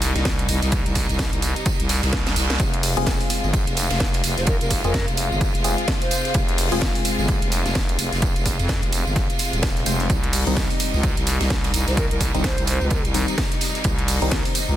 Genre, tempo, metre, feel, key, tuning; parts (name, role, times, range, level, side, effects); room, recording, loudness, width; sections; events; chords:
bass house; 128 BPM; 4/4; swing 59% on 16ths; F minor; A4 = 440 Hz
rich studio string section; sustained chords; 0.0-14.8 s; C3 to F4; -29 LUFS; left 1 dB; sidechain pumping
growling FM bass; bass; 0.0-14.8 s; Eb1 to F2; -24 LUFS; equal; sidechain pumping
garage drum kit; drums; 0.0-14.7 s; hi-hat, snare drum; -28 LUFS; equal; small room reverb
oversized low-tuned drum kit; drums; 0.0-14.7 s; hi-hat, ride cymbal, snare drum; -30 LUFS; right 2 dB; sidechain pumping on cymbals, high-pass filter on cymbals, small room reverb, sidechain pumping on hats, high-pass filter on hats, high-pass filter on snare, high-pass filter on room
tambourine; percussion; 0.0-14.8 s; -31 LUFS; right 7 dB
electronic kick drum; drums; 0.3-14.4 s; -23 LUFS; equal; overdrive, small room reverb
reverse cymbal; sound effects; 1.8-2.6 s; -32 LUFS; right 5 dB
percussive organ stab; stabs; 3.0-14.8 s; Eb3 to C5; -29 LUFS; left 3 dB; chorus, phaser, sidechain pumping, ping-pong delay
breathy mellow silver concert flute; melody; 4.4-6.3, 11.9-13.0 s; Bb4 to C5; -31 LUFS; right 1 dB; ping-pong delay
small room ambience; dense, heavily limited modern master; -19 LUFS; side -12 dB against mid
0.0-14.8 A section
reverse cymbal 1.8-2.6; drum fill 2.2-2.6
0.0 Cm; 2.6 Fm; 10.1 Cm